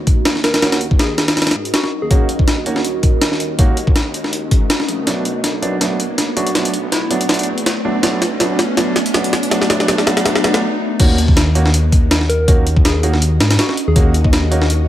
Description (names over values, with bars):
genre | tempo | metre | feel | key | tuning
drum and bass, jungle | 162 BPM | 4/4 | swing 54% on 16ths | Eb minor | A4 = 440 Hz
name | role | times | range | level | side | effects
dark detuned saw bass | bass | 0.0-14.9 s | A1 to Ab2 | -20 LUFS | equal | high-pass filter
riser | sound effects | 1.7-10.6 s | none | -27 LUFS | left 1 dB | none
breakbeat sampler-style drum kit | drums | 0.1-14.8 s | crash cymbal, hi-hat, kick drum, snare drum | -15 LUFS | equal | none
soft struck synth lead | melody | 0.4-2.3, 6.4-7.1, 12.3-14.1 s | Fb4 to Bb4 | -24 LUFS | left 1 dB | chorus, tremolo, dub echo
warm concert grand piano | stabs | 0.6-14.6 s | F#3 to Gb4 | -22 LUFS | right 2 dB | vintage 12-bit sampler grit, dub echo
room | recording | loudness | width
light reverb | none | -13 LUFS | side -12 dB against mid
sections
0.0-11.0 A section; 11.0-14.9 B section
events
build-up 0.0-11.0; riser 1.7-10.6; drum fill 5.1-10.6; stop 10.6-11.0; drop 11.0-14.9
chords
0.0 Ebm7; 5.1 Bm7; 11.0 Ebm7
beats
0.26 | 0.62 1.00 1.37 1.74 | 2.11 2.48 2.85 3.22 | 3.59 3.96 4.33 4.70 | 5.07 5.44 5.81 6.18 | 6.55 6.92 7.29 7.66 | 8.03 8.40 8.77 9.14 | 9.51 9.88 10.26 10.62 | 11.00 11.37 11.74 12.11 | 12.48 12.85 13.22 13.59 | 13.96 14.33 14.70